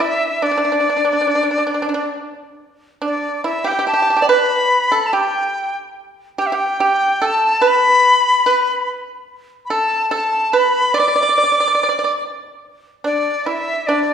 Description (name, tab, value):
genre	chinese traditional, Chinese chamber ensemble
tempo	71 BPM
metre	4/4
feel	rubato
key	unclear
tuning	A4 = 440 Hz
part	bright reedy dizi	melody	0.0-14.1 s	D5 to D6	-16 LUFS	left 2 dB	none
part	pipa	second line	0.0-14.1 s	D4 to D5	-19 LUFS	right 3 dB	none
room	wet recital hall reverb, RT60 1.6 s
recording	heard from further back in the room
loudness	-14 LUFS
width	side -8 dB against mid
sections	0.0-14.1 A section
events	none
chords	none